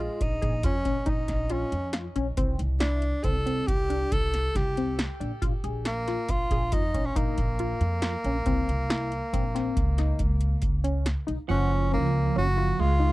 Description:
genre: progressive instrumental, band music in an uneven meter.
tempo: 138 BPM.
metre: 7/4.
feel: straight.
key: Bb minor.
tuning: A4 = 440 Hz.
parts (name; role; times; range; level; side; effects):
breathy tenor saxophone; melody; 0.0-13.1 s; Ab3 to A4; -30 LUFS; equal; tape echo.
tight sequenced synth; arpeggios; 0.0-13.1 s; C4 to Gb5; -32 LUFS; left 3 dB; chorus.
upright bass; bass; 0.0-13.1 s; Gb1 to F2; -28 LUFS; equal; none.
electro analog drum machine; drums; 0.2-11.4 s; hi-hat, kick drum, snare drum; -29 LUFS; equal; none.
semi-hollow electric guitar; second line; 11.5-13.1 s; F3 to Ab3; -31 LUFS; right 11 dB; phaser.
room: little or no reverb.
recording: dry, close 1970s-style studio recording.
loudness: -24 LUFS.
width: side -18 dB against mid.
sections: 0.0-11.5 A section; 11.5-13.1 B section.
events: none.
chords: 0.0 Bbm; 2.4 C5; 5.4 Bb5; 8.5 C7; 9.8 Bmaj9 (rootless); 11.5 Gbmaj7.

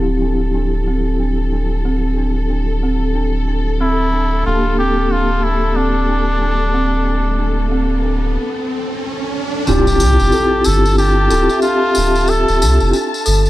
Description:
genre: trip hop.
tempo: 92 BPM.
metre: 4/4.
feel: swing 60% on 16ths.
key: D minor.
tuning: A4 = 440 Hz.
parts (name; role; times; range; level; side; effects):
vibraphone with soft mallets; accompaniment; 0.0-13.0 s; F3 to E5; -20 LUFS; left 1 dB; tremolo, tape echo.
dark chamber string section; sustained chords; 0.0-13.5 s; A4 to A5; -26 LUFS; left 4 dB; vintage 12-bit sampler grit.
celesta; arpeggios; 0.0-13.5 s; C4 to A4; -22 LUFS; right 2 dB; low-pass filter, tape echo.
soft dub sub bass; bass; 0.0-13.5 s; D1 to C2; -17 LUFS; equal; none.
trumpet with cup mute; melody; 3.8-12.9 s; D4 to A4; -19 LUFS; equal; tape echo.
riser and impact; sound effects; 7.1-12.3 s; none; -23 LUFS; right 1 dB; none.
tambourine; percussion; 9.7-13.5 s; none; -24 LUFS; left 2 dB; none.
room: small room ambience.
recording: none.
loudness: -14 LUFS.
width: side -16 dB against mid.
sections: 0.0-9.7 A section; 9.7-13.5 B section.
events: riser 7.1-9.7; break 8.4-9.7; impact 9.7-12.3.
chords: 0.0 Dm11; 4.5 Gmadd9/D; 9.7 Dm11.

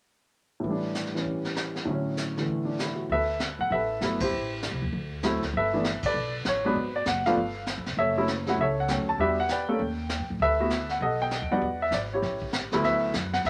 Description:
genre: jazz piano trio.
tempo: 197 BPM.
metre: 4/4.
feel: swing 63% on 8ths.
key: D major.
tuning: A4 = 441 Hz.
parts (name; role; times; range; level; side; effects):
warm baby grand piano; melody; 0.6-13.5 s; D2 to A5; -28 LUFS; equal; none.
vintage brush drum kit; drums; 0.6-13.5 s; brushed snare drum, hi-hat, kick drum, ride cymbal, snare drum; -36 LUFS; equal; none.
upright bass; bass; 3.1-13.5 s; F1 to A2; -36 LUFS; equal; none.
room: wet club reverb, RT60 0.5 s.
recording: none.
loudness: -28 LUFS.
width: mono.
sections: 0.7-3.1 A section; 3.1-12.8 B section.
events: band accent 4.2, 6.0.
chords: 0.7 A7sus4; 1.9 Dmaj7/A; 3.1 D69; 4.3 Am7; 4.9 D7; 5.5 G69; 6.8 G#m7b5; 7.4 G9; 8.0 F#m7; 9.2 Em7; 9.8 Eb; 10.4 D69; 11.0 B7b13; 11.6 E7(no3); 12.2 A7; 12.8 D69.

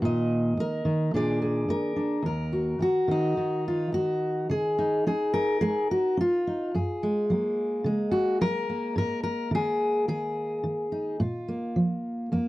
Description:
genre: folk, solo fingerstyle acoustic guitar.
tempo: 108 BPM.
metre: 4/4.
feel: straight.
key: Eb minor.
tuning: A4 = 441 Hz.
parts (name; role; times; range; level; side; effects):
fingerpicked steel-string acoustic guitar; solo; 0.0-12.5 s; Eb2 to Eb5; -24 LUFS; equal; none.
room: light reverb.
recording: dry, close 1970s-style studio recording.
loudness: -24 LUFS.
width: side -17 dB against mid.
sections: 0.0-4.5 A section; 4.5-12.5 B section.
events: none.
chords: 0.0 Eb5/Bb; 1.1 Bb7; 2.2 Ebm; 4.5 Dbadd9; 6.7 Gbadd9; 9.0 Absus2; 11.2 Bb5.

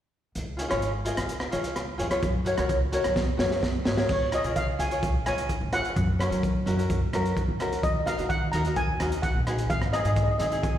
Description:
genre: calypso.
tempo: 128 BPM.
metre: 4/4.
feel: straight.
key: Db major.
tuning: A4 = 437 Hz.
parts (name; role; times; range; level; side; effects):
upright bass; bass; 0.4-10.8 s; Ab1 to Gb3; -29 LUFS; equal; none.
crunchy breakbeat drum kit; drums; 0.4-10.7 s; crash cymbal, hi-hat, kick drum, rim click, snare drum; -29 LUFS; equal; none.
tenor ukulele; accompaniment; 0.6-10.7 s; C4 to Eb5; -30 LUFS; left 1 dB; plate reverb, slapback echo.
steel pan; melody; 4.1-10.8 s; Db5 to Bb5; -29 LUFS; equal; plate reverb, slapback echo.
room: light reverb.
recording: live gig heard through the venue's PA, recital hall reverb.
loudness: -24 LUFS.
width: side -11 dB against mid.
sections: 0.4-4.1 A section; 4.1-10.8 B section.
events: drum fill 3.2-4.1.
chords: 0.4 Db; 2.2 Gb; 4.1 Db; 6.0 Gb; 7.8 Ebm; 9.7 Ab.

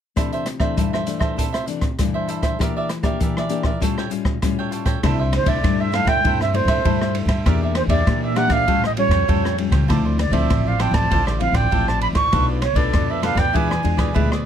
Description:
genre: samba and choro.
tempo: 99 BPM.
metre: 4/4.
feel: straight.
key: C major.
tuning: A4 = 443 Hz.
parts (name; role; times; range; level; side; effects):
cavaquinho; accompaniment; 0.2-14.5 s; E4 to G5; -27 LUFS; right 5 dB; none.
nylon-string guitar; accompaniment; 0.2-14.5 s; G2 to G4; -24 LUFS; left 8 dB; none.
open jazz drum kit; drums; 0.2-14.5 s; hi-hat, kick drum, ride cymbal, rim click; -22 LUFS; equal; none.
upright bass; bass; 5.0-14.4 s; A1 to Bb2; -22 LUFS; equal; none.
reedy silver concert flute; melody; 5.4-14.2 s; C5 to Db6; -21 LUFS; right 3 dB; none.
room: light reverb.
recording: close, detailed microphones.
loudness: -17 LUFS.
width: side -9 dB against mid.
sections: 0.2-5.0 A section; 5.0-14.5 B section.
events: none.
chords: 0.2 C69; 2.6 Em7b5; 3.8 Aaug7; 5.0 C69; 7.5 Em7b5; 8.7 Aaug7; 9.9 Dm9; 12.3 Bm7b5; 13.6 E7b9.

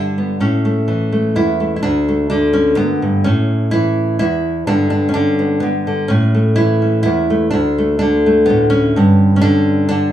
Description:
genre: folk, solo fingerstyle acoustic guitar.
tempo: 126 BPM.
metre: 3/4.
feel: straight.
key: unclear.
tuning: A4 = 440 Hz.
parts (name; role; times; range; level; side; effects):
nylon-string guitar; solo; 0.0-10.1 s; D2 to E4; -12 LUFS; equal; none.
room: light reverb.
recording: small room ambience.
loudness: -12 LUFS.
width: side -11 dB against mid.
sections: 0.0-1.8 A section; 1.8-10.1 B section.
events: none.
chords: 0.4 A; 1.8 D; 3.3 A; 4.7 G; 6.1 A; 7.5 D5; 9.0 G.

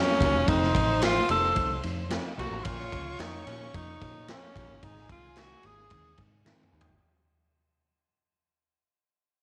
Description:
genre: uptempo 1960s-style soul.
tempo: 110 BPM.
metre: 4/4.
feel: straight.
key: Ab mixolydian.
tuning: A4 = 441 Hz.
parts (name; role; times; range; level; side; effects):
breathy tenor saxophone; melody; 0.0-6.2 s; Db4 to A4; -31 LUFS; equal; none.
clear studio violin section; second line; 0.0-6.7 s; Db4 to Db6; -41 LUFS; equal; none.
reed electric piano; accompaniment; 0.0-6.9 s; Eb3 to Gb4; -39 LUFS; equal; fast tremolo.
warm baritone saxophone; riff; 0.0-6.9 s; Eb2 to Bb2; -40 LUFS; equal; none.
raw garage drum kit; drums; 0.1-6.9 s; kick drum, ride cymbal, snare drum, toms; -34 LUFS; equal; none.
vintage muted fingered electric bass; bass; 0.2-7.0 s; Fb1 to Bb2; -37 LUFS; equal; none.
finger snap; percussion; 1.0-6.6 s; none; -44 LUFS; equal; none.
room: light reverb, studio reverb.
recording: none.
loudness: -27 LUFS.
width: mono.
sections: 0.0-7.0 A section.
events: fade-out 0.0-7.0; drum fill 6.5-7.0.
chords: 0.5 F7; 2.7 Bbm; 4.8 Ab.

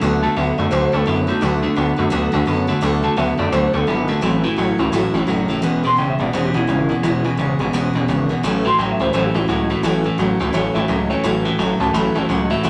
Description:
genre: rockabilly.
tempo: 171 BPM.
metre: 4/4.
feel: swing 61% on 8ths.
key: A major.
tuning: A4 = 440 Hz.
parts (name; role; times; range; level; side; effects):
picked steel-string acoustic guitar; accompaniment; 0.0-12.7 s; A2 to A4; -25 LUFS; equal; none.
electric guitar at the edge of break-up; riff; 0.0-12.7 s; E2 to B3; -22 LUFS; equal; none.
gritty driven synth bass; bass; 0.0-12.7 s; E1 to F#2; -26 LUFS; equal; distortion.
electric guitar through a small old amp; melody; 0.2-12.7 s; C4 to C6; -25 LUFS; equal; none.
room: moderate large studio reverb, RT60 0.9 s.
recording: none.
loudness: -18 LUFS.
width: mono.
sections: 0.0-11.2 A section; 11.2-12.7 B section.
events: none.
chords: 0.0 D6; 4.2 A6; 5.6 E6; 8.4 A6.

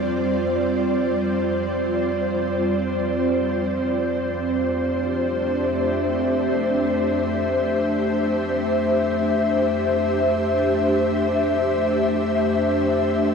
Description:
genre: ambient.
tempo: free time.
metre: none.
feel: none.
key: F major.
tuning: A4 = 438 Hz.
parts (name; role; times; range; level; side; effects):
ethereal airy pad; solo; 0.0-13.3 s; F2 to E5; -19 LUFS; equal; ensemble chorus, built-in reverb, ping-pong delay.
room: wet huge ambient reverb, RT60 7.7 s.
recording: none.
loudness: -19 LUFS.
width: side -6 dB against mid.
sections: 0.0-3.9 A section; 3.9-13.3 B section.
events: none.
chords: 0.0 G5/F; 3.9 Fmaj13.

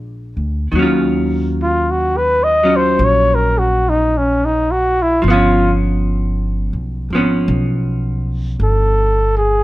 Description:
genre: jazz ballad.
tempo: 54 BPM.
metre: 4/4.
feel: swing 68% on 8ths.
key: Eb minor.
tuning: A4 = 442 Hz.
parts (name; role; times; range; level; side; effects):
vintage hollow-body jazz guitar; accompaniment; 0.0-9.6 s; Eb3 to F4; -19 LUFS; equal; none.
upright bass; bass; 0.0-9.6 s; G1 to Eb2; -18 LUFS; equal; none.
breathy trumpet; melody; 1.6-9.6 s; Db4 to Eb5; -14 LUFS; equal; plate reverb.
room: light reverb.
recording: none.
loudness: -13 LUFS.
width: side -17 dB against mid.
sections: 0.7-9.6 A section.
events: trumpet solo 0.7-9.6.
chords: 0.0 Bb7; 0.7 Ebm9; 5.2 G7#11.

